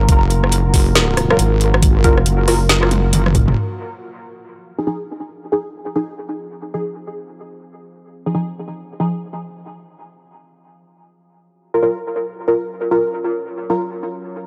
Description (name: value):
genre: deep dubstep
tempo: 138 BPM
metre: 4/4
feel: swing 61% on 16ths, half-time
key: F phrygian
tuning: A4 = 438 Hz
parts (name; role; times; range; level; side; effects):
- deep dark ambient pad; sustained chords; 0.0-14.5 s; F4 to Ab5; -31 LUFS; equal; chorus, built-in reverb
- wobble bass; bass; 0.0-3.6 s; Gb1 to Ab1; -18 LUFS; equal; chorus
- electronic kick drum; drums; 0.1-3.5 s; none; -17 LUFS; equal; overdrive
- garage drum kit; drums; 0.1-3.5 s; hi-hat, rim click, snare drum, toms; -20 LUFS; equal; overdrive
- filtered dub chord stab; stabs; 1.3-9.1, 11.7-13.8 s; F3 to Bb4; -23 LUFS; equal; phaser, ensemble chorus, dub echo
room: digital ambience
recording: dry, gritty hardware recording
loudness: -18 LUFS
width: mono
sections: 0.0-3.6 A section; 3.6-14.5 B section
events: drop 0.0-3.6; drum fill 2.9-3.6; filter sweep on ambient pad 3.6-14.5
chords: 0.0 Gbmaj7; 3.6 Fm7; 10.5 Gbmaj7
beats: | 0.09 0.52 0.96 1.39 | 1.83 2.26 2.69 3.13 | 3.56 4.00 4.43 4.87 | 5.30 5.74 6.17 6.61 | 7.04 7.48 7.91 8.35 | 8.78 9.22 9.65 10.09 | 10.52 10.96 11.39 11.83 | 12.26 12.70 13.13 13.56 | 14.00 14.44